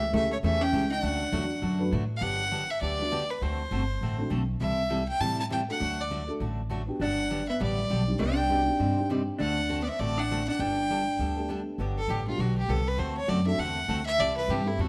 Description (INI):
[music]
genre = country, western swing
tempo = 201 BPM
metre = 4/4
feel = swing 61% on 8ths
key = G major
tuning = A4 = 441 Hz
[part]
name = clear fiddle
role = melody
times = 0.0-14.9 s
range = E4 to A5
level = -32 LUFS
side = equal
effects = none
[part]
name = vintage hollow-body jazz guitar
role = second line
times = 0.0-1.9, 7.0-11.5 s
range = G3 to D4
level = -34 LUFS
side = equal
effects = none
[part]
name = picked steel-string acoustic guitar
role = accompaniment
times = 0.0-14.9 s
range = C3 to D5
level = -36 LUFS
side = equal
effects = none
[part]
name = upright bass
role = bass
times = 0.0-14.9 s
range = G1 to A2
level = -33 LUFS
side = equal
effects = none
[part]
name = dark upright piano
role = accompaniment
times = 0.1-14.8 s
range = F#3 to B4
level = -38 LUFS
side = equal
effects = none
[sound]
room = moderate echo chamber reverb, RT60 1.4 s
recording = none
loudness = -28 LUFS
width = mono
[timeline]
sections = 0.0-2.2 A section; 2.2-11.8 B section; 11.8-14.9 C section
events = fiddle solo 11.8-14.9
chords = 0.0 A7/C#; 1.0 D; 2.2 Gmaj7; 3.4 D7; 4.6 Am7/C; 5.8 D; 7.0 Gmaj7; 8.2 Cmadd9; 9.4 D7; 10.6 Gadd9; 11.8 Gmaj7; 13.0 D7; 14.2 Am7/C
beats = 0.13 0.43 0.73 | 1.02 1.32 1.62 1.92 | 2.22 2.52 2.82 3.12 | 3.41 3.71 4.01 4.31 | 4.61 4.91 5.21 5.51 | 5.80 6.10 6.40 6.70 | 7.00 7.30 7.60 7.90 | 8.20 8.50 8.79 9.09 | 9.39 9.69 9.99 10.29 | 10.59 10.89 11.19 11.49 | 11.79 12.09 12.39 12.69 | 12.99 13.29 13.59 13.89 | 14.19 14.49 14.79